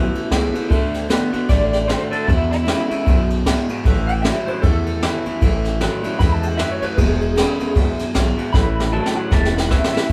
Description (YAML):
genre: rockabilly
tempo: 153 BPM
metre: 4/4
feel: swing 58% on 8ths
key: A major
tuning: A4 = 440 Hz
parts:
  - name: electric guitar through a small old amp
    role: melody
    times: 0.0-10.1 s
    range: E4 to B5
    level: -26 LUFS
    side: equal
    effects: tremolo
  - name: picked steel-string acoustic guitar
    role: accompaniment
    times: 0.0-10.1 s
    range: E2 to F#4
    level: -30 LUFS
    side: equal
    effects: none
  - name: electric guitar through a small old amp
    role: riff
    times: 0.0-10.1 s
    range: E2 to B3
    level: -26 LUFS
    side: equal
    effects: none
  - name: upright bass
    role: bass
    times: 0.0-10.1 s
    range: E1 to E2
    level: -24 LUFS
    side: equal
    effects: none
  - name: jazz brush drum kit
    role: drums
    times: 0.1-10.1 s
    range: kick drum, ride cymbal, snare drum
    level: -22 LUFS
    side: equal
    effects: none
room: moderate stone room reverb, RT60 1.0 s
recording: band playing live in one room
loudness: -19 LUFS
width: mono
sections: 0.0-10.1 A section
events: clean electric guitar solo 0.0-10.1; drum fill 8.5-10.1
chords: 0.0 A; 0.7 D; 2.3 E7; 3.8 A; 7.0 E7; 8.5 A